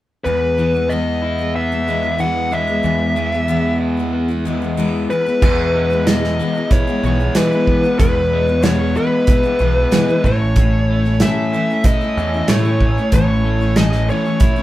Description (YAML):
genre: folk rock and heartland rock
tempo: 94 BPM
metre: 4/4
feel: straight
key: E major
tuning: A4 = 440 Hz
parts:
  - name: smooth overdriven lead guitar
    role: melody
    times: 0.2-14.6 s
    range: B4 to F#5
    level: -20 LUFS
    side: left 1 dB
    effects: none
  - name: crunchy overdriven guitar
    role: riff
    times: 0.2-14.6 s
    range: E2 to E4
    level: -22 LUFS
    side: equal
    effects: none
  - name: picked steel-string acoustic guitar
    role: accompaniment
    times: 0.3-14.6 s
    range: E2 to E4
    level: -22 LUFS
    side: left 4 dB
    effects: none
  - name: modern bright picked electric bass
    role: bass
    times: 0.3-14.1 s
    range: A1 to E3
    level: -20 LUFS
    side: right 1 dB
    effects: none
  - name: natural country drum kit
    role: drums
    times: 5.4-14.6 s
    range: crash cymbal, hi-hat, kick drum, snare drum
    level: -16 LUFS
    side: right 1 dB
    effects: none
room: wet studio ambience, RT60 0.5 s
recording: band playing live in one room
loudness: -14 LUFS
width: side -15 dB against mid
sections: 0.3-5.4 A section; 5.4-14.6 B section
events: none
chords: 0.3 E; 10.2 A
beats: | 0.26 0.91 1.55 2.20 | 2.85 3.49 4.14 4.78 | 5.42 6.07 6.71 7.35 | 8.00 8.64 9.28 9.92 | 10.56 11.20 11.84 12.48 | 13.12 13.77 14.41